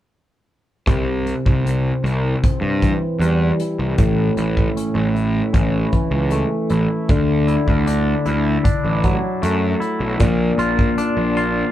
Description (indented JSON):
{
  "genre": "psychedelic rock",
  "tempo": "77 BPM",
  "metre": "4/4",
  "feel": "straight",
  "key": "unclear",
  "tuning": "A4 = 439 Hz",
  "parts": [
    { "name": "twangy electric guitar", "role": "riff", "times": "0.9-11.7 s", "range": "A2 to F4", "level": "-20 LUFS", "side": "left 1 dB", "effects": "phaser, low-pass filter" },
    { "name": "fuzz picked electric bass", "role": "bass", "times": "0.9-11.6 s", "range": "A1 to G2", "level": "-20 LUFS", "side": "right 1 dB", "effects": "overdrive" },
    { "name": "soft brush drum kit", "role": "drums", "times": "0.9-11.5 s", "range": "hi-hat, kick drum", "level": "-20 LUFS", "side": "equal", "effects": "none" }
  ],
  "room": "moderate studio reverb, RT60 0.5 s",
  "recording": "band playing live in one room",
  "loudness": "-16 LUFS",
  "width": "side -12 dB against mid",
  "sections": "0.9-11.7 A section",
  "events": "filter sweep on clean electric guitar 0.9-11.7",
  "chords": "0.9 C; 4.0 A; 7.1 Dadd9; 10.2 Bb",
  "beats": "| 0.87 1.65 2.43 3.21 | 3.99 4.77 5.54 6.32 | 7.10 7.88 8.65 9.43 | 10.21 10.98"
}